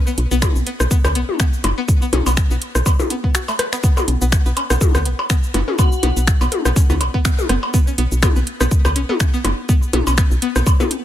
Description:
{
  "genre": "minimal techno",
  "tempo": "123 BPM",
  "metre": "4/4",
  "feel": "swing 56% on 16ths",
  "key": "B minor",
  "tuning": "A4 = 440 Hz",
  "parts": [
    { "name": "string-like resonator pluck", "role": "riff", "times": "0.1-10.8 s", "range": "A3 to B4", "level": "-26 LUFS", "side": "left 1 dB", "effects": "chorus, phaser, cassette tape, sidechain pumping, ping-pong delay" },
    { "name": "house drum kit", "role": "drums", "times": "0.1-11.0 s", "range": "cabasa, finger snaps, hi-hat", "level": "-24 LUFS", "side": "equal", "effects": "none" },
    { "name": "woody FM bass", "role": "bass", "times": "0.2-10.6 s", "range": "F#1 to D2", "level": "-18 LUFS", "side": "equal", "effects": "tube saturation, sidechain pumping" },
    { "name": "electronic kick drum", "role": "drums", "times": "0.4-10.8 s", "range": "none", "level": "-16 LUFS", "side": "equal", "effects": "none" },
    { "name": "minimal click drum kit", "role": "percussion", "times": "0.4-10.9 s", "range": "percussion blips, rim click, toms", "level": "-22 LUFS", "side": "left 2 dB", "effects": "none" },
    { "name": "airy dreamy lead", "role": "melody", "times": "5.8-6.3 s", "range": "F#4", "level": "-29 LUFS", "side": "left 3 dB", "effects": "chorus, tape echo" }
  ],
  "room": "digital ambience",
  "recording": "none",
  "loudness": "-15 LUFS",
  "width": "side -12 dB against mid",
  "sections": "0.0-11.0 A section",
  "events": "break 3.3-3.8",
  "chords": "none",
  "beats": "0.42 0.91 1.40 | 1.88 2.37 2.86 3.35 | 3.84 4.32 4.81 5.30 | 5.79 6.28 6.76 7.25 | 7.74 8.23 8.71 9.20 | 9.69 10.18 10.66"
}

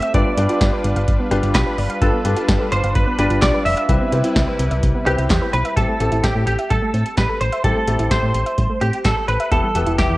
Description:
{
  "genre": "synth-pop",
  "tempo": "128 BPM",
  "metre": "4/4",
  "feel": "straight",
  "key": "A minor",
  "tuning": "A4 = 440 Hz",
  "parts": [
    { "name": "direct-recorded clean electric guitar", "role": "melody", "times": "0.0-10.2 s", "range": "G4 to E5", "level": "-22 LUFS", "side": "right 1 dB", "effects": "ensemble chorus, ping-pong delay" },
    { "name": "brassy analog pad", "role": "sustained chords", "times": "0.0-5.7 s", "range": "C3 to B4", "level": "-26 LUFS", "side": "equal", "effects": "chorus" },
    { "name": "soft round pluck", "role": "arpeggios", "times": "0.0-10.1 s", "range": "E3 to F5", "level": "-26 LUFS", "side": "right 1 dB", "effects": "chorus, ping-pong delay" },
    { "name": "electro analog drum machine", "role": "drums", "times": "0.0-10.1 s", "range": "handclaps, hi-hat, kick drum, snare drum", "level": "-20 LUFS", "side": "equal", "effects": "none" },
    { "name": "clear grand piano", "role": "accompaniment", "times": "0.1-10.2 s", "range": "B3 to D5", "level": "-24 LUFS", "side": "left 2 dB", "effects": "none" },
    { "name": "solid FM bass", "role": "bass", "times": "0.1-10.2 s", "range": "E1 to C3", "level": "-20 LUFS", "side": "equal", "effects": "none" }
  ],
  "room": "light reverb",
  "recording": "worn, warbling old tape, cassette tape, warbly pitch drift",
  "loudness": "-16 LUFS",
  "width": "side -18 dB against mid",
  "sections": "0.0-5.8 A section; 5.8-10.2 B section",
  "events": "none",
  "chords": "0.1 G7; 3.9 Cmaj7; 5.8 Am7; 9.5 Em",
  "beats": "| 0.14 0.61 1.08 1.55 | 2.02 2.48 2.95 3.42 | 3.89 4.36 4.83 5.30 | 5.77 6.24 6.70 7.17 | 7.64 8.11 8.58 9.05 | 9.52 9.98"
}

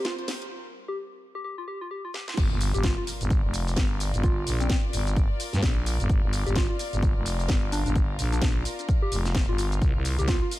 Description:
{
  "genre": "bass house",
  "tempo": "129 BPM",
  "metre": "4/4",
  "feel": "swing 59% on 16ths",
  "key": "G minor",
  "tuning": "A4 = 441 Hz",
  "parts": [
    { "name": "soft struck synth lead", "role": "melody", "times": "0.0-10.5 s", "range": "C4 to G4", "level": "-34 LUFS", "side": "left 1 dB", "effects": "chorus, digital delay" },
    { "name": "deep dark ambient pad", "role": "sustained chords", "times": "0.0-10.6 s", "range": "G3 to Bb4", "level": "-50 LUFS", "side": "left 1 dB", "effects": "none" },
    { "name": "garage drum kit", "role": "drums", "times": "0.0-10.6 s", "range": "crash cymbal, hi-hat, shaker, snare drum", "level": "-32 LUFS", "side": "equal", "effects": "none" },
    { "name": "warm chamber string section", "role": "texture", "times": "0.0-10.6 s", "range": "G3 to Eb5", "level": "-38 LUFS", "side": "left 2 dB", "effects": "sidechain pumping" },
    { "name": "growling FM bass", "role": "bass", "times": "2.4-10.4 s", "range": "F1 to G2", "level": "-27 LUFS", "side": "equal", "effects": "tube saturation, sidechain pumping" },
    { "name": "electronic kick drum", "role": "drums", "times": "2.4-10.4 s", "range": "none", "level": "-24 LUFS", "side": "equal", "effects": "none" },
    { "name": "impact", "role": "sound effects", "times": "2.4-4.2 s", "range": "none", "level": "-35 LUFS", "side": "equal", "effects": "none" }
  ],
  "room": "digital ambience",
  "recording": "high-pass filter",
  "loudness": "-23 LUFS",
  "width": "side -16 dB against mid",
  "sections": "0.0-2.4 A section; 2.4-10.6 B section",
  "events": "build-up 0.0-2.4; drum fill 0.0-0.5, 2.1; break 0.5-2.4; drop 2.4-10.6; impact 2.4-4.2",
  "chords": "0.0 Gm; 9.8 Cm",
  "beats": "0.05 | 0.51 0.98 1.44 1.91 | 2.37 2.84 3.31 3.77 | 4.24 4.70 5.17 5.63 | 6.09 6.56 7.03 7.49 | 7.96 8.42 8.89 9.35 | 9.82 10.28"
}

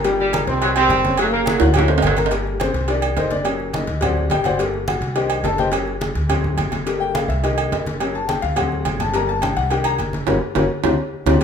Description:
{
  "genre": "latin, salsa",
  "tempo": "211 BPM",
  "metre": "4/4",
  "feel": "straight",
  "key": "G harmonic minor",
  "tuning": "A4 = 440 Hz",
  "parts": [
    { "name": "clear baby grand piano", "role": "accompaniment", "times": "0.0-11.4 s", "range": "D3 to G6", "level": "-22 LUFS", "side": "left 4 dB", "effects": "none" },
    { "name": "upright bass", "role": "bass", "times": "0.0-11.4 s", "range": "F#1 to D2", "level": "-24 LUFS", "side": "equal", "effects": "none" },
    { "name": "agogo bells and timbales", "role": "percussion", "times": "0.0-11.4 s", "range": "none", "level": "-24 LUFS", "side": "right 5 dB", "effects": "none" },
    { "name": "cowbell", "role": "percussion", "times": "0.0-11.4 s", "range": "none", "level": "-27 LUFS", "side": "left 4 dB", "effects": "none" },
    { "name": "clear trombone section", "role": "melody", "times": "0.1-1.7 s", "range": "Bb2 to C4", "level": "-20 LUFS", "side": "right 3 dB", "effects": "none" },
    { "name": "congas", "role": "percussion", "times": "0.1-11.4 s", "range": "none", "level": "-27 LUFS", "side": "equal", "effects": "none" },
    { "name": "edgy saxophone section", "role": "second line", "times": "0.2-2.2 s", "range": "D3 to A#3", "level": "-24 LUFS", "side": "equal", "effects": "none" }
  ],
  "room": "moderate large studio reverb, RT60 1.1 s",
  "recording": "minimal, uncompressed stereo recording",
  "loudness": "-17 LUFS",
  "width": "side -7 dB against mid",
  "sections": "0.0-2.3 A section; 2.3-11.4 B section",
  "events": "drum fill 1.6-2.3; grand piano solo 2.3-11.4; band accent 10.3-11.4",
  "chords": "0.1 Gm; 0.6 Cm; 1.2 F#; 1.8 D7; 2.3 Gmadd9; 2.9 Cm7; 3.5 F#; 4.0 D7; 4.6 Gmadd9; 5.2 Cm7; 5.7 F#; 6.3 D7; 6.9 Gmadd9; 7.4 Cm7; 8.0 F#; 8.6 D7; 9.1 Gmadd9; 9.7 Cm7; 10.3 F#; 10.8 D7",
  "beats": "| 0.05 0.34 0.62 0.90 | 1.19 1.47 1.75 2.04 | 2.32 2.60 2.89 3.17 | 3.46 3.74 4.02 4.31 | 4.59 4.88 5.16 5.44 | 5.73 6.01 6.30 6.58 | 6.86 7.15 7.43 7.72 | 8.00 8.29 8.57 8.86 | 9.14 9.42 9.71 9.99 | 10.28 10.56 10.84 11.13 | 11.41"
}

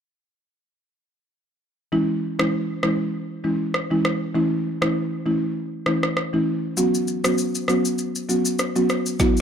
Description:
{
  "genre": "afrobeats",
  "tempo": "99 BPM",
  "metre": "4/4",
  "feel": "swing 55% on 16ths",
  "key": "C# minor",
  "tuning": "A4 = 436 Hz",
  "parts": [
    { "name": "buzzing marimba with soft mallets", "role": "accompaniment", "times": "1.9-9.4 s", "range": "E3 to F#4", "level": "-21 LUFS", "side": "equal", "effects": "none" },
    { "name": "afro-pop drum kit", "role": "drums", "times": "2.4-9.4 s", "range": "kick drum, rim click, shaker, snare drum", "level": "-24 LUFS", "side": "equal", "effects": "overdrive" }
  ],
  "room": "light reverb, digital ambience",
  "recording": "none",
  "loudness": "-20 LUFS",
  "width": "side -8 dB against mid",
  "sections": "1.9-9.4 A section",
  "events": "drum fill 9.2",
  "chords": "1.9 C#m; 4.3 A; 6.8 Bsus2",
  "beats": "| 1.93 2.53 3.14 3.74 | 4.35 4.96 5.56 6.17 | 6.77 7.38 7.99 8.59 | 9.20"
}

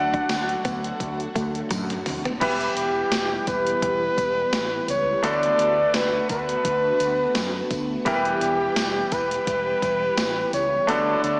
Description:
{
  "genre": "1980s-style pop",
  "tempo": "85 BPM",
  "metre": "4/4",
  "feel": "swing 55% on 16ths",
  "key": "E minor",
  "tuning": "A4 = 444 Hz",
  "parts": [
    { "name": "mellow flugelhorn", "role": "melody", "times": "0.0-11.4 s", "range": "G4 to F#5", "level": "-26 LUFS", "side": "equal", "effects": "tape echo" },
    { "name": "bright grand piano", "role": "accompaniment", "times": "0.0-11.4 s", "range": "D3 to D5", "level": "-30 LUFS", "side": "equal", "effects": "slapback echo" },
    { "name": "phased string machine", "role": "sustained chords", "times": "0.0-11.4 s", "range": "D3 to G4", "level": "-33 LUFS", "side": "equal", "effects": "ensemble chorus, phaser" },
    { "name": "mellow fretless electric bass", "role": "bass", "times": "0.0-11.4 s", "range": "E1 to F#2", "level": "-38 LUFS", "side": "equal", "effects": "none" },
    { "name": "direct-recorded clean electric guitar", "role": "riff", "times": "0.1-2.4 s", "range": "F#3 to D4", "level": "-34 LUFS", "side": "equal", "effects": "subtle chorus, slapback echo, tape echo" },
    { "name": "gated 80s digital drum machine", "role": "drums", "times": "0.1-11.4 s", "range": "crash cymbal, hi-hat, kick drum, snare drum, tambourine, toms", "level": "-31 LUFS", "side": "equal", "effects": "gated reverb, gated reverb snare" },
    { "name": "tambourine", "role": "percussion", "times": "0.3-11.4 s", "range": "none", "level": "-45 LUFS", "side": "equal", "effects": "none" }
  ],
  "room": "wet lush hall reverb, RT60 2.1 s",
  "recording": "big arena sound, small speaker sound",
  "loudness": "-23 LUFS",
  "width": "mono",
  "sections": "0.0-2.4 A section; 2.4-11.4 B section",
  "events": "drum fill 1.7-2.4",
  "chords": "0.0 D; 2.4 Em; 5.2 D6; 8.1 Em; 10.9 D6",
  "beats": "0.30 1.00 1.71 | 2.41 3.12 3.83 4.53 | 5.24 5.94 6.65 7.36 | 8.06 8.77 9.47 10.18 | 10.88"
}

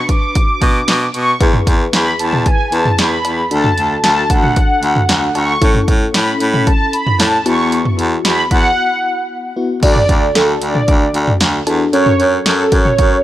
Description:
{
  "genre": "synth-pop",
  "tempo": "114 BPM",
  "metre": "4/4",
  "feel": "straight",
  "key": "unclear",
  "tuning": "A4 = 440 Hz",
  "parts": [
    { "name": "mellow synth brass", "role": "melody", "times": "0.0-13.2 s", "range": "A4 to D6", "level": "-16 LUFS", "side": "right 1 dB", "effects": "chorus, slapback echo" },
    { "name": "FM electric piano with tremolo", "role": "accompaniment", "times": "0.0-13.2 s", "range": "B3 to B4", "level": "-20 LUFS", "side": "left 3 dB", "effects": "phaser" },
    { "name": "punchy analog drum machine", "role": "drums", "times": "0.1-13.1 s", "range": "cowbell, crash cymbal, hi-hat, kick drum, snare drum, toms", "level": "-15 LUFS", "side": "equal", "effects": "none" },
    { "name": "breathy baritone saxophone", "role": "bass", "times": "0.6-13.2 s", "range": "D2 to B2", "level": "-17 LUFS", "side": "equal", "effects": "none" }
  ],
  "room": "light reverb",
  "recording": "none",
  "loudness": "-11 LUFS",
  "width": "side -14 dB against mid",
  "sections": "0.0-9.8 A section; 9.8-13.2 B section",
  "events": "break 8.8-9.8",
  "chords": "0.0 Bm; 1.4 E; 3.5 D; 5.6 A; 7.5 Esus2; 9.8 D; 11.9 F#m",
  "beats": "0.35 0.88 | 1.41 1.93 2.46 2.98 | 3.51 4.04 4.56 5.09 | 5.62 6.14 6.67 7.20 | 7.72 8.25 8.77 9.30 | 9.83 10.35 10.88 11.41 | 11.93 12.46 12.98"
}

